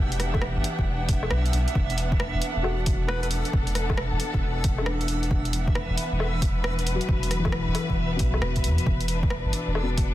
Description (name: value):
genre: future garage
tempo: 135 BPM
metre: 4/4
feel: swing 65% on 16ths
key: unclear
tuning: A4 = 442 Hz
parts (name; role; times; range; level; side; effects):
- felt-muted upright piano; accompaniment; 0.0-10.1 s; B2 to A4; -34 LUFS; left 4 dB; vintage 12-bit sampler grit, sidechain pumping, digital delay
- dark symphonic string section; sustained chords; 0.0-10.1 s; E3 to G5; -31 LUFS; equal; sidechain pumping
- soft dub sub bass; bass; 0.0-10.1 s; E1 to E2; -27 LUFS; equal; none
- backwards swelling texture; texture; 0.0-10.1 s; B4 to E5; -36 LUFS; right 4 dB; built-in reverb
- deep house drum kit; drums; 0.1-10.1 s; hi-hat, rim click, woodblock; -31 LUFS; equal; overdrive, studio reverb
- electronic kick drum; drums; 0.3-10.1 s; none; -27 LUFS; equal; overdrive, studio reverb
- breathy alto saxophone; melody; 3.1-3.3 s; B4; -36 LUFS; left 1 dB; ping-pong delay
room: small room ambience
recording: dense, heavily limited modern master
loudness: -23 LUFS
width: side -14 dB against mid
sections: 0.0-10.1 A section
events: none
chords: 0.0 Em7; 1.8 Bm7/E; 8.9 E7(no3)